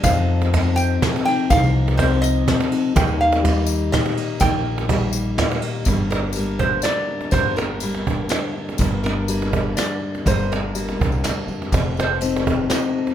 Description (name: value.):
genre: acoustic folk duo or small band.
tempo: 123 BPM.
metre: 3/4.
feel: straight.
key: G minor.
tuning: A4 = 440 Hz.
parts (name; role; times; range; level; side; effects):
metal-body resonator slide guitar; melody; 0.0-13.1 s; Bb4 to G5; -24 LUFS; right 2 dB; none.
fingerpicked steel-string acoustic guitar; accompaniment; 0.0-13.1 s; G2 to Bb4; -23 LUFS; left 4 dB; none.
upright bass; bass; 0.0-12.7 s; F1 to F2; -23 LUFS; equal; none.
soft brush drum kit; drums; 0.0-12.8 s; kick drum, ride cymbal, snare drum; -27 LUFS; equal; none.
cajon; percussion; 0.0-13.1 s; none; -24 LUFS; right 3 dB; none.
tambourine; percussion; 0.0-12.8 s; none; -33 LUFS; left 10 dB; none.
room: light reverb.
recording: none.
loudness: -18 LUFS.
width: side -10 dB against mid.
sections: 0.0-5.9 A section; 5.9-13.1 B section.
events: none.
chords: 0.0 F7; 3.0 Eb; 5.9 Gm; 11.7 F7.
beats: | 0.04 0.52 1.01 | 1.50 1.98 2.47 | 2.95 3.44 3.93 | 4.41 4.90 5.38 | 5.87 6.36 6.85 | 7.33 7.82 8.31 | 8.80 9.29 9.77 | 10.26 10.75 11.24 | 11.72 12.21 12.70.